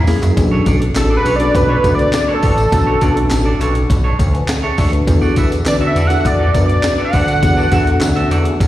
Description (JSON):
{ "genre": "early-eighties boogie funk", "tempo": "102 BPM", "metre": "4/4", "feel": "straight", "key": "B dorian", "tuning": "A4 = 441 Hz", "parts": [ { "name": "fat analog lead", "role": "melody", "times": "0.0-8.5 s", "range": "A4 to F#5", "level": "-17 LUFS", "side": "right 1 dB", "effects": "slapback echo, tape echo" }, { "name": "clean electric guitar", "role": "riff", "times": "0.0-8.6 s", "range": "A#3 to E5", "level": "-25 LUFS", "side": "right 4 dB", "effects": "lush chorus, slapback echo" }, { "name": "chorused synth bass", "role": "bass", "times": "0.0-8.7 s", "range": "A1 to F#2", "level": "-16 LUFS", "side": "equal", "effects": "none" }, { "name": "mellow tine electric piano", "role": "accompaniment", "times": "0.1-8.6 s", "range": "A#3 to A5", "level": "-20 LUFS", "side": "left 2 dB", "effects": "medium stereo tremolo, slapback echo" }, { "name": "breakbeat sampler-style drum kit", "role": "drums", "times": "0.1-8.7 s", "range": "handclaps, hi-hat, kick drum, snare drum, toms", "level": "-18 LUFS", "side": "equal", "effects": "none" }, { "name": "tambourine", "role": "percussion", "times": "0.1-8.7 s", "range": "none", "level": "-34 LUFS", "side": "left 4 dB", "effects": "none" } ], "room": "light reverb, digital ambience", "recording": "live gig heard through the venue's PA, recital hall reverb", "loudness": "-12 LUFS", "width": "side -14 dB against mid", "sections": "0.4-8.7 A section", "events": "drum fill 0.0-0.4; analog synth lead solo 0.4-8.7", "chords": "0.4 Bm9; 5.1 E9sus4" }